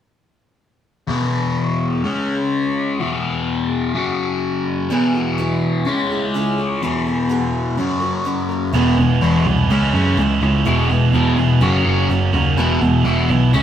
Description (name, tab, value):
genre	rock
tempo	125 BPM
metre	4/4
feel	straight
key	E major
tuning	A4 = 440 Hz
part	overdriven electric guitar	riff	1.1-13.6 s	E2 to C#4	-18 LUFS	left 2 dB	phaser
part	picked steel-string acoustic guitar	accompaniment	4.9-13.6 s	C#3 to A#4	-28 LUFS	right 5 dB	none
part	cranked stack guitar	riff	8.7-13.6 s	E2 to G#4	-20 LUFS	right 6 dB	overdrive
part	picked electric bass	bass	8.7-13.6 s	E1 to F#2	-18 LUFS	right 1 dB	none
room	wet stone room reverb, RT60 1.1 s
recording	band playing live in one room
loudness	-16 LUFS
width	side -10 dB against mid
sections	1.1-8.7 A section; 8.7-13.6 B section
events	none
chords	1.1 E5; 2.0 C#5; 3.0 E5; 4.0 F#5; 4.9 Eadd9; 5.9 C#m; 6.8 Eadd9; 7.8 F#; 8.7 Eadd9; 9.7 C#m; 10.7 Eadd9; 11.6 F#; 12.6 Eadd9